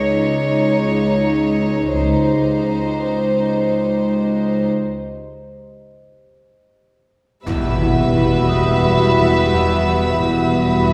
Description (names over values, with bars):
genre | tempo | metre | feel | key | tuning
cinematic, suspense film score | 87 BPM | 4/4 | straight | E minor from 7.5 s | A4 = 440 Hz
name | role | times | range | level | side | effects
warm studio violin section | second line | 0.0-10.9 s | D#4 to E5 | -22 LUFS | equal | none
glass harmonica | sustained chords | 0.0-10.9 s | E4 to F#5 | -28 LUFS | equal | none
warm symphonic cello section | bass | 0.0-10.9 s | C#2 to E2 | -24 LUFS | equal | none
vibraphone with soft mallets | texture | 0.0-2.0, 8.5-10.9 s | G4 to D#6 | -34 LUFS | equal | none
dark symphonic double bass section | bass | 1.9-2.6, 7.5-10.9 s | E1 to C#2 | -25 LUFS | equal | none
dark symphonic viola section | accompaniment | 7.5-10.9 s | G3 to F#4 | -24 LUFS | equal | none
concert harp | riff | 7.5-10.9 s | E2 to E3 | -23 LUFS | equal | none
impact | sound effects | 7.5-10.2 s | none | -27 LUFS | equal | none
warm studio violin section | texture | 7.5-10.9 s | B5 to E6 | -31 LUFS | equal | none
room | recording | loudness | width
wet recital hall reverb, RT60 1.9 s | recorded in a church or concert hall | -17 LUFS | mono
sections
0.0-7.5 A section; 7.5-10.9 B section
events
break 4.7-7.5; impact 7.5-10.2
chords
0.0 C#sus2; 2.0 Cm/C#; 7.5 Emadd9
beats
0.57 1.26 | 1.95 2.64 3.33 4.02 | 4.71 5.40 6.09 6.78 | 7.47 8.16 8.85 9.54 | 10.23 10.92